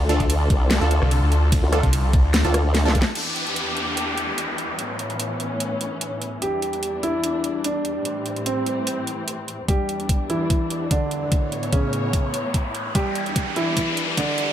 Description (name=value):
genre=heavy wobble dubstep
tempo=147 BPM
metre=4/4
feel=half-time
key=E phrygian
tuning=A4 = 440 Hz
part: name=muted studio string section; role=sustained chords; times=0.0-14.5 s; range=E2 to C#5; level=-29 LUFS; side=left 2 dB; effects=sidechain pumping
part: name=formant-sweep wobble bass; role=bass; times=0.0-3.0 s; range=C2 to D2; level=-19 LUFS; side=equal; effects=chorus, overdrive
part: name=supersaw stab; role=stabs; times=0.1-2.9 s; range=D4 to A4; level=-27 LUFS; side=right 2 dB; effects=digital delay
part: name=dubstep drum kit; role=drums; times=0.1-14.5 s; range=crash cymbal, hi-hat, ride cymbal, rim click, snare drum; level=-26 LUFS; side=equal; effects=none
part: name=electronic kick drum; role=drums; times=0.2-3.0, 9.7-14.3 s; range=none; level=-21 LUFS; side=equal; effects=none
part: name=snarling distorted saw bass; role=bass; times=1.0-2.4 s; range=C2 to D2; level=-19 LUFS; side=equal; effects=distortion, overdrive
part: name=downlifter and riser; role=sound effects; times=3.2-6.4, 10.8-14.5 s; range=none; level=-28 LUFS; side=equal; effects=none
part: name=dark concert grand piano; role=melody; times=6.4-14.5 s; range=C#3 to G4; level=-25 LUFS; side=right 1 dB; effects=digital delay
room=light reverb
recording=high-pass filter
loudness=-20 LUFS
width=side -10 dB against mid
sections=0.0-3.2 A section; 3.2-9.7 B section; 9.7-14.5 C section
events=drop 0.0-3.2; drum fill 2.7-3.2, 12.9-14.5; build-up 9.7-14.5; filter sweep 9.7-14.5; riser 10.8-14.5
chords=0.0 Dm; 3.2 Em7; 4.8 Aadd9; 6.4 Em7; 8.1 Am7; 9.7 Em7; 11.3 Aadd9; 12.9 Em7